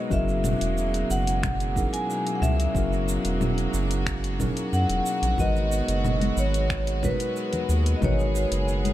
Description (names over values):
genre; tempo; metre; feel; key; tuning
sunset chillout; 91 BPM; 4/4; straight; unclear; A4 = 440 Hz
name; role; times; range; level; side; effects
vibraphone with medium hard mallets; melody; 0.0-8.9 s; B4 to G#5; -30 LUFS; right 1 dB; tape echo
tine electric piano; accompaniment; 0.0-8.9 s; F#3 to B4; -30 LUFS; moving between left 7 dB and right 5 dB; auto-pan, tape echo
rich studio string section; sustained chords; 0.0-8.9 s; B2 to G#4; -33 LUFS; right 1 dB; none
round analog bass; bass; 0.1-8.9 s; E1 to F#2; -26 LUFS; equal; none
deep house drum kit; drums; 0.1-8.9 s; cabasa, congas, finger snaps, hi-hat; -31 LUFS; left 1 dB; none
electronic kick drum; drums; 0.1-8.2 s; none; -30 LUFS; equal; none
congas; percussion; 5.4-8.9 s; none; -32 LUFS; left 2 dB; none
room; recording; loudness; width
digital ambience; none; -22 LUFS; side -14 dB against mid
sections
0.0-8.9 A section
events
none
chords
0.1 F#13; 5.4 G#m7